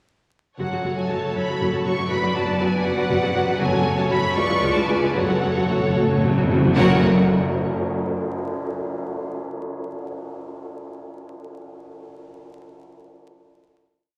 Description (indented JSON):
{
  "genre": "classical, dramatic, fast romantic movement for symphony orchestra",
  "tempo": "73-80 BPM (dotted quarters)",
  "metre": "6/8",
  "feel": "straight",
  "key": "F# minor",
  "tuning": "A4 = 440 Hz",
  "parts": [
    { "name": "clear symphonic violin section", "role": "melody", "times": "0.6-7.1 s", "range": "F#5 to C#6", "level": "-29 LUFS", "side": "equal", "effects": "none" },
    { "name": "rich symphonic violin section", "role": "second line", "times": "0.6-7.1 s", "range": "A4 to D5", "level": "-29 LUFS", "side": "equal", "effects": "none" },
    { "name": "rich symphonic viola section", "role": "accompaniment", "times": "0.6-7.1 s", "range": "F#3 to F#4", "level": "-27 LUFS", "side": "equal", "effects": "none" },
    { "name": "concert harp", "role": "arpeggios", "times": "0.6-8.4 s", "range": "F#2 to F#5", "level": "-28 LUFS", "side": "equal", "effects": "none" },
    { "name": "rich symphonic cello section", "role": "bass", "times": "0.6-7.1 s", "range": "C#2 to C#3", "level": "-30 LUFS", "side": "equal", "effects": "none" },
    { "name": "rich symphonic double bass section", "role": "bass", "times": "0.6-7.1 s", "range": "F#1 to C#2", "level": "-33 LUFS", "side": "equal", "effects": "none" },
    { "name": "timpani", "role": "percussion", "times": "2.1-7.0 s", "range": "F#2", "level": "-27 LUFS", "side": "equal", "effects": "none" },
    { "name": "cymbal swell and tam-tam", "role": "percussion", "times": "3.6-8.9 s", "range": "none", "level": "-32 LUFS", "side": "equal", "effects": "none" }
  ],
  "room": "wet concert hall reverb, RT60 1.9 s",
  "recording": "vinyl crackle",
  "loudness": "-21 LUFS",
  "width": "mono",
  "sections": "0.6-6.8 A section; 6.8-8.4 final chord",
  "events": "timpani fill 5.2-6.8; band accent 6.8-7.3",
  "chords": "0.6 F#m; 2.1 Bm/F#; 3.6 F#m; 4.4 C#7b9; 5.2 F#m; 6.8 F#"
}